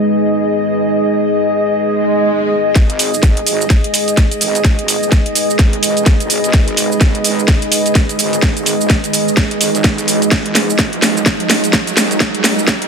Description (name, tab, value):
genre	bass house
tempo	127 BPM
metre	4/4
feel	swing 60% on 16ths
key	G# minor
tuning	A4 = 440 Hz
part	deep dark ambient pad	sustained chords	0.0-12.9 s	G#3 to B4	-19 LUFS	right 2 dB	chorus, built-in reverb, sidechain pumping
part	airy breathy pad	texture	0.0-12.9 s	G#4 to D#5	-18 LUFS	left 1 dB	chorus, sidechain pumping
part	swell and riser	sound effects	1.9-12.9 s	none	-25 LUFS	right 2 dB	none
part	wobble bass	bass	2.8-12.7 s	G#1 to B1	-27 LUFS	left 1 dB	chorus, overdrive, sidechain pumping, high-pass filter
part	electronic kick drum	drums	2.8-12.8 s	none	-12 LUFS	equal	none
part	garage drum kit	drums	2.8-12.9 s	hi-hat, shaker, snare drum	-15 LUFS	right 1 dB	none
room	light reverb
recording	dense, heavily limited modern master, high-pass filter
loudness	-11 LUFS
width	side -6 dB against mid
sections	0.0-2.8 A section; 2.8-12.9 B section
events	filter sweep on ambient pad 0.0-2.8; swell 1.9-2.8; build-up 2.8-12.9; drum fill 2.8-12.9; riser 2.8-12.9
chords	0.0 G#m